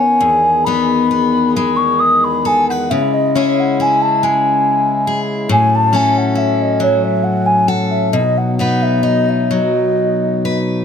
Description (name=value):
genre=celtic folk, Celtic slow air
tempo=45 BPM (dotted quarters)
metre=6/8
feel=uneven beats, rubato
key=E major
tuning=A4 = 441 Hz
part: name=mellow hollow baroque flute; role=melody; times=0.0-10.6 s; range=C#5 to D#6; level=-15 LUFS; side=equal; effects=none
part: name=picked steel-string acoustic guitar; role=accompaniment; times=0.0-10.8 s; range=E2 to C#5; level=-16 LUFS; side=left 3 dB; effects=none
part: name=pedal harmonium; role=sustained chords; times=0.0-10.8 s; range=E2 to G#4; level=-23 LUFS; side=right 3 dB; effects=none
room=light reverb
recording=close, detailed microphones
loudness=-12 LUFS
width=side -7 dB against mid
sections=0.0-10.8 A section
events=none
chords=0.2 Emaj7; 2.9 C#m; 5.5 A6; 8.1 B